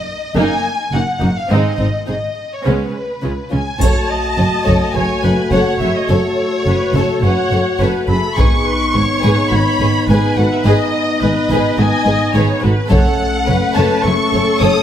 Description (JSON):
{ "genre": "cinematic, epic orchestral film score", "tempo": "105 BPM", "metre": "4/4", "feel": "straight", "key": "F# dorian from 3.8 s", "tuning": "A4 = 439 Hz", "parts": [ { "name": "warm symphonic violin section", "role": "melody", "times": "0.0-14.8 s", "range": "Cb5 to D#6", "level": "-20 LUFS", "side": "left 1 dB", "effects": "none" }, { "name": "dark symphonic violin section", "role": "second line", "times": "0.4-14.8 s", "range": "Ab3 to C#5", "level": "-22 LUFS", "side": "left 1 dB", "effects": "none" }, { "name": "rich symphonic viola section", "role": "accompaniment", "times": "0.4-14.8 s", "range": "Ab3 to D#5", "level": "-22 LUFS", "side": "right 1 dB", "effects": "none" }, { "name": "dark studio cello section", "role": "bass", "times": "0.4-14.7 s", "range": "Gb2 to Db3", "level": "-19 LUFS", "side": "right 1 dB", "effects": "none" }, { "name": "warm symphonic double bass section", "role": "bass", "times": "0.4-14.7 s", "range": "Gb1 to Db2", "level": "-20 LUFS", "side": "right 2 dB", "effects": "none" }, { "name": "mellow French horn section", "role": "sustained chords", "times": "3.8-14.8 s", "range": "A3 to F#4", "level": "-20 LUFS", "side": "left 3 dB", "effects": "none" }, { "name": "solo taiko drums", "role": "drums", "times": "3.8-4.9, 8.4-9.5, 12.9-14.0 s", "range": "none", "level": "-18 LUFS", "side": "equal", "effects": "none" }, { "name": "triangle", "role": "percussion", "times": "3.8-4.9 s", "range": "none", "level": "-31 LUFS", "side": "left 2 dB", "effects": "none" } ], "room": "light reverb", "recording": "close, detailed microphones", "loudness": "-13 LUFS", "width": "side -10 dB against mid", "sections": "0.0-3.8 A section; 3.8-14.8 B section", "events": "none", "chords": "0.0 Ebm/Gb; 1.5 Ab; 2.7 Db7(no3); 3.8 F#m; 8.4 G#m; 12.9 F#m" }